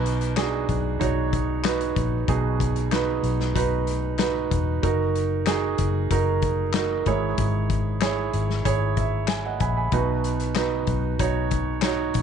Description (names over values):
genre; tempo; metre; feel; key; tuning
piano-driven pop; 94 BPM; 4/4; straight; B major; A4 = 440 Hz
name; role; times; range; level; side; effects
warm grand piano; accompaniment; 0.0-12.2 s; G#2 to B5; -24 LUFS; right 7 dB; none
vintage muted fingered electric bass; bass; 0.0-12.2 s; E1 to B1; -26 LUFS; left 2 dB; none
loose indie drum kit; drums; 0.1-12.2 s; handclaps, hi-hat, kick drum, snare drum; -28 LUFS; left 7 dB; none
room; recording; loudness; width
moderate spring reverb, RT60 1.8 s, small room ambience; 1960s-style stereo with parts hard left and right, nothing above 10.3 kHz; -21 LUFS; side -7 dB against mid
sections
0.0-12.2 A section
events
grand piano fill 8.7-9.9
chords
0.0 B; 4.8 F#6; 7.1 E6/G#; 9.9 B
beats
0.37 1.01 1.64 | 2.28 2.92 3.56 4.20 | 4.83 5.47 6.11 6.75 | 7.38 8.02 8.66 9.30 | 9.93 10.57 11.21 11.84